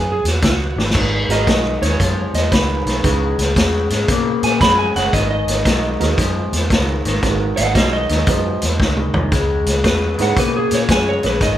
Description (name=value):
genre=electric blues shuffle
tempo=115 BPM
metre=4/4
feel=swing 66% on 8ths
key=G# minor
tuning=A4 = 440 Hz
part: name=electric slide guitar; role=second line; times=0.0-11.6 s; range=F#4 to B5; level=-21 LUFS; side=right 1 dB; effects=none
part: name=electric guitar through a small old amp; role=riff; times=0.0-11.6 s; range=G#2 to A#3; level=-21 LUFS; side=left 2 dB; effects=none
part: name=vintage muted fingered electric bass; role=bass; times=0.0-11.6 s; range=F#1 to B2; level=-21 LUFS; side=equal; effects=none
part: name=vintage drum kit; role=drums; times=0.3-11.6 s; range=crash cymbal, hi-hat, kick drum, snare drum, toms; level=-18 LUFS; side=equal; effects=none
part: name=warm grand piano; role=accompaniment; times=1.3-10.4 s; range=G#3 to B4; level=-24 LUFS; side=right 7 dB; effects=none
room=light reverb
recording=band playing live in one room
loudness=-14 LUFS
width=side -12 dB against mid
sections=1.0-11.6 A section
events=drum fill 0.7, 8.8-9.3; electric slide guitar solo 1.0-11.6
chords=0.0 G#7(no3); 1.0 G#m7; 3.0 C#m7; 5.1 G#m7; 9.3 C#m7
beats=0.43 | 0.95 1.47 2.00 2.52 | 3.04 3.57 4.09 4.61 | 5.14 5.66 6.18 6.71 | 7.23 7.75 8.28 8.80 | 9.32 9.85 10.37 10.89 | 11.42